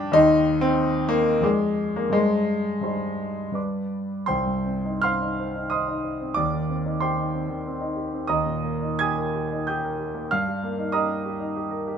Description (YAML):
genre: classical, romantic character piece for solo piano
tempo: 74-100 BPM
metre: 3/4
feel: rubato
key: C minor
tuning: A4 = 440 Hz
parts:
  - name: warm grand piano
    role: solo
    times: 0.0-12.0 s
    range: C2 to Ab6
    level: -22 LUFS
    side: equal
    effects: none
room: moderate large studio reverb, RT60 0.9 s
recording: minimal, uncompressed stereo recording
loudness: -22 LUFS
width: side -7 dB against mid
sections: 0.0-4.3 A section; 4.3-12.0 B section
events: none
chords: 0.1 Cm/Eb; 1.4 Ddim/F; 2.1 Cm/G; 3.6 G; 4.3 Cm; 6.4 Cm/Eb; 8.3 Eb; 10.3 Eb/G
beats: | 0.15 0.78 1.44 | 2.15 2.85 3.56 | 4.29 5.06 5.73 | 6.37 7.01 7.66 | 8.29 9.00 9.67 | 10.31 10.93 11.56